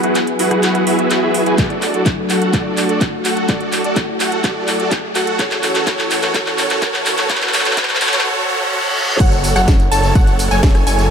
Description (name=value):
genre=EDM, festival progressive house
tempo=126 BPM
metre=4/4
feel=straight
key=F# minor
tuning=A4 = 441 Hz
part: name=lush unison pad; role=sustained chords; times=0.0-8.2 s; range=E3 to A4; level=-22 LUFS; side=left 1 dB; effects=chorus, vintage 12-bit sampler grit, sidechain pumping
part: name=supersaw chords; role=riff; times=0.0-11.1 s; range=E4 to A5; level=-18 LUFS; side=right 1 dB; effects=sidechain pumping, low-pass filter, ping-pong delay
part: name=house drum kit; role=drums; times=0.0-11.1 s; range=crash cymbal, handclaps, hi-hat, ride cymbal, rim click, snare drum, tambourine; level=-20 LUFS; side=equal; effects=none
part: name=riser and reverse cymbal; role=sound effects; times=0.3-9.2 s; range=none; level=-26 LUFS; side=equal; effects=none
part: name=electronic kick drum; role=drums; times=1.6-10.7 s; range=none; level=-15 LUFS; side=equal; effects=none
part: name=wide unison pluck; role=arpeggios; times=9.2-11.1 s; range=F#5 to A5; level=-20 LUFS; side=equal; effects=sidechain pumping, ping-pong delay
part: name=wide detuned saw bass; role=bass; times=9.2-11.1 s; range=F#1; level=-17 LUFS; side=equal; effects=chorus, sidechain pumping
room=moderate huge ambient reverb, RT60 4.6 s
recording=high-pass filter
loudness=-13 LUFS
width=side -7 dB against mid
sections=0.0-9.2 A section; 9.2-11.1 B section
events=build-up 0.0-9.2; drum fill 0.0-8.2; filter sweep on supersaw synth 0.0-9.2; filter sweep on analog synth pad 0.0-9.2; filter sweep 0.0-9.2; riser 0.3-9.2; reverse cymbal 8.2-9.2; drop 9.2-11.1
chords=0.0 Eadd9; 1.6 D; 5.4 A; 9.2 F#m